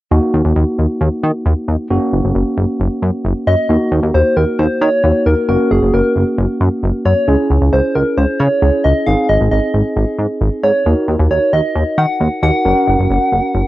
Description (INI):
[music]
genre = synth-pop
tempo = 134 BPM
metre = 4/4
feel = straight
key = unclear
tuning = A4 = 443 Hz
[part]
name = tine electric piano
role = accompaniment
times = 0.1-13.7 s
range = Bb3 to Bb4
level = -18 LUFS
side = right 1 dB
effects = cassette tape
[part]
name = chorused synth bass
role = bass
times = 0.1-13.6 s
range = Gb1 to Eb3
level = -14 LUFS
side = equal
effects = none
[part]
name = soft struck synth lead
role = melody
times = 3.5-13.7 s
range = Ab4 to Gb5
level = -16 LUFS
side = equal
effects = chorus, cassette tape
[sound]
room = moderate small room reverb, RT60 0.5 s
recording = home recording on cassette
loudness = -12 LUFS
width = side -16 dB against mid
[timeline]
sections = 0.1-3.7 A section; 3.7-13.7 B section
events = none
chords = 0.1 Ebm; 1.9 Gb; 3.7 Ebm7; 5.5 Gb; 7.3 Dbm; 9.1 Ab; 10.9 Ebm; 12.7 Gb